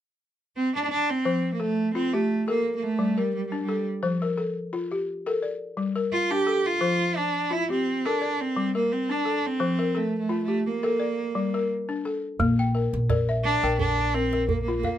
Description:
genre	west african traditional, West African string and xylophone music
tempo	86 BPM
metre	4/4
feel	swing 54% on 16ths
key	F major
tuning	A4 = 439 Hz
part	rich cello	melody	0.6-15.0 s	G3 to G4	-25 LUFS	right 3 dB	none
part	balafon	arpeggios	1.3-15.0 s	F3 to G5	-27 LUFS	left 3 dB	none
part	upright bass	bass	12.4-14.8 s	Bb1	-26 LUFS	equal	none
part	djembe	percussion	12.4-15.0 s	none	-29 LUFS	right 4 dB	none
room	light reverb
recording	close, detailed microphones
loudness	-23 LUFS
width	side -11 dB against mid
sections	0.0-1.3 A section; 1.3-12.4 B section; 12.4-15.0 C section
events	none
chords	0.0 N.C.; 1.3 F; 2.6 Gm; 4.0 F; 5.4 Gm; 6.8 F; 8.2 Gm; 9.6 F; 11.0 Gm; 12.4 Bb

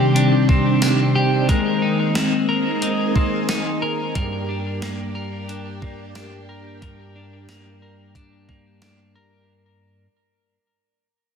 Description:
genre	dream pop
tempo	90 BPM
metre	4/4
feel	straight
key	unclear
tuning	A4 = 441 Hz
part	ensemble organ-string	sustained chords	0.0-9.5 s	Eb3 to Ab4	-22 LUFS	right 1 dB	phaser, ensemble chorus
part	clean electric guitar	arpeggios	0.0-10.1 s	G2 to Bb4	-21 LUFS	left 2 dB	lush chorus, ping-pong delay
part	gated 80s digital drum machine	drums	0.2-9.0 s	hi-hat, kick drum, snare drum, tambourine	-22 LUFS	right 1 dB	gated reverb, gated reverb snare
room	moderate lush hall reverb, RT60 2.7 s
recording	dense, heavily limited modern master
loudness	-17 LUFS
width	side -6 dB against mid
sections	0.0-9.5 A section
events	fade-out 0.0-9.5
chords	0.0 Cmadd9; 1.5 Abadd9; 4.2 Gm

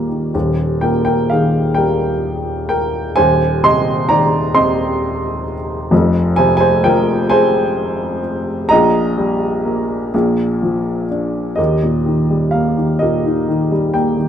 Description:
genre	classical, lyrical solo piano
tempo	43 BPM (dotted quarters)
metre	6/8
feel	rubato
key	Eb major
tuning	A4 = 440 Hz
part	warm upright piano	solo	0.0-14.3 s	Eb1 to C6	-13 LUFS	equal	none
room	light reverb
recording	none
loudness	-13 LUFS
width	side -9 dB against mid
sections	0.3-11.6 A section; 11.6-14.3 B section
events	none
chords	0.3 Eb; 3.2 Abadd9/Eb; 5.9 Fm; 8.7 Eb/Bb; 10.1 Bb; 11.6 Eb

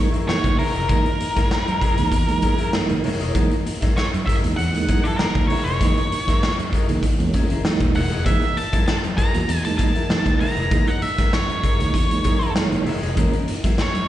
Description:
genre	funk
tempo	98 BPM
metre	4/4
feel	straight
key	F# mixolydian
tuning	A4 = 441 Hz
part	electric guitar through a small old amp	accompaniment	0.0-13.8 s	E4 to E5	-30 LUFS	left 4 dB	spring reverb, slapback echo
part	mellow tonewheel organ	stabs	0.0-13.9 s	E3 to D#5	-25 LUFS	right 4 dB	chorus vibrato, fast rotary speaker, slapback echo
part	vintage muted fingered electric bass	bass	0.0-14.1 s	D#1 to F#2	-26 LUFS	equal	none
part	raw garage drum kit	drums	0.1-14.1 s	hi-hat, kick drum, snare drum	-21 LUFS	equal	none
part	octave-fuzz lead guitar	melody	0.3-14.1 s	A4 to A#5	-25 LUFS	equal	distortion, slapback echo
part	congas	percussion	0.3-14.1 s	none	-33 LUFS	right 3 dB	none
room	light reverb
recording	live gig heard through the venue's PA, recital hall reverb, nothing above 10.3 kHz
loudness	-18 LUFS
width	side -13 dB against mid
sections	0.0-14.1 A section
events	tonewheel organ fill 2.1-3.4, 11.9-13.2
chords	0.0 F#13

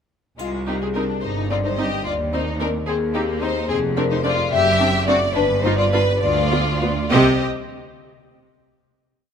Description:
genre	cinematic, playful, whimsical film cue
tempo	67-74 BPM (dotted quarters)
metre	6/8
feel	straight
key	C minor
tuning	A4 = 441 Hz
part	marimba with medium mallets	melody	0.4-7.4 s	F4 to E5	-24 LUFS	left 5 dB	none
part	rich studio violin section	melody	0.4-7.4 s	Ab3 to G4	-26 LUFS	left 3 dB	none
part	rich studio violin section	second line	0.4-7.4 s	F4 to E5	-25 LUFS	left 1 dB	none
part	bright studio cello section	bass	0.4-7.4 s	C2 to C3	-25 LUFS	right 2 dB	none
part	rich studio double bass section	bass	0.4-7.4 s	F1 to Eb2	-25 LUFS	right 3 dB	none
part	triangle	percussion	0.4-1.5 s	none	-47 LUFS	left 5 dB	none
part	rich studio viola section	accompaniment	0.7-7.4 s	B3 to G4	-25 LUFS	right 1 dB	none
room	moderate scoring stage reverb, RT60 2.0 s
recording	close, detailed microphones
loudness	-17 LUFS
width	side -7 dB against mid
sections	0.4-7.1 A section; 7.1-8.9 final chord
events	none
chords	0.4 Cm; 2.1 Cm/Eb; 3.7 Fm6; 4.5 D7/F#; 5.4 G7; 7.1 C5

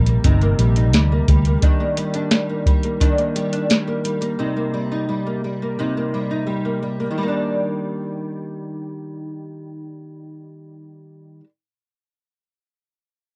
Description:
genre	indie pop, bedroom pop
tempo	87 BPM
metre	4/4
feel	straight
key	Eb major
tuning	A4 = 439 Hz
part	nylon-string guitar	accompaniment	0.0-11.5 s	C3 to Eb4	-25 LUFS	equal	analog chorus, warbly pitch drift, cassette tape
part	vintage muted fingered electric bass	bass	0.0-1.6 s	G1 to D2	-18 LUFS	equal	none
part	soft vintage rhythm box	drums	0.1-4.4 s	hi-hat, kick drum, snare drum	-20 LUFS	equal	cassette tape
room	light reverb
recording	home recording on cassette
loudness	-20 LUFS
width	mono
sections	0.0-7.2 A section; 7.2-9.9 B section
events	none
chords	0.0 Cm7; 1.6 Ebmaj7; 4.4 Cm7; 7.2 Ebmaj7

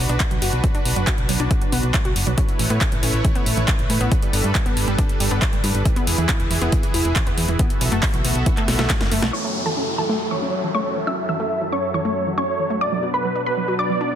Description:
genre	uplifting trance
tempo	138 BPM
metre	4/4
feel	straight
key	F# minor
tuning	A4 = 440 Hz
part	supersaw pad	sustained chords	0.0-14.2 s	F#2 to E5	-26 LUFS	equal	sidechain pumping, low-pass filter
part	analog pluck	arpeggios	0.0-14.1 s	E3 to F#4	-27 LUFS	right 1 dB	chorus, sidechain pumping, tape echo
part	solid FM bass	bass	0.0-9.3 s	E1 to A2	-22 LUFS	equal	sidechain pumping
part	big-room dance drum kit	drums	0.1-9.3 s	handclaps, hi-hat, snare drum	-25 LUFS	equal	low-pass filter on hats, low-pass filter on cymbals, low-pass filter on snare, low-pass filter on room
part	electronic kick drum	drums	0.2-9.0 s	none	-21 LUFS	equal	none
part	dense compressed supersaw	melody	9.3-14.2 s	A4 to E5	-24 LUFS	right 1 dB	sidechain pumping, low-pass filter, tape echo
part	wide unison pluck	second line	9.3-14.2 s	A5 to E6	-28 LUFS	equal	sidechain pumping, tape echo
part	downlifter	sound effects	9.3-12.8 s	none	-29 LUFS	equal	none
room	moderate scoring stage reverb, RT60 1.9 s, digital ambience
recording	dense, heavily limited modern master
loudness	-18 LUFS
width	side -10 dB against mid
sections	0.0-9.3 A section; 9.3-14.2 B section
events	drum fill 8.7-9.3; filter sweep on supersaw synth 9.3-14.2; filter sweep on synth pluck 9.3-14.2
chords	0.0 Bm; 2.4 Aadd9; 4.1 Gadd9; 5.9 E; 7.6 B7sus4; 9.3 F#m7; 12.8 Bm

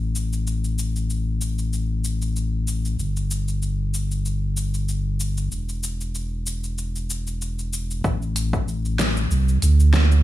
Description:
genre	organic downtempo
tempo	95 BPM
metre	4/4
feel	swing 55% on 16ths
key	A minor pentatonic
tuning	A4 = 439 Hz
part	warm sub bass	bass	0.0-10.2 s	E1 to D2	-21 LUFS	equal	none
part	deep house drum kit	drums	0.2-10.2 s	hi-hat, shaker, snare drum	-29 LUFS	left 1 dB	overdrive
part	electronic kick drum	drums	8.0-8.6 s	none	-24 LUFS	equal	overdrive
room	digital ambience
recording	studio reverb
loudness	-21 LUFS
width	side -14 dB against mid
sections	0.0-8.0 A section; 8.0-10.2 B section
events	none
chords	none

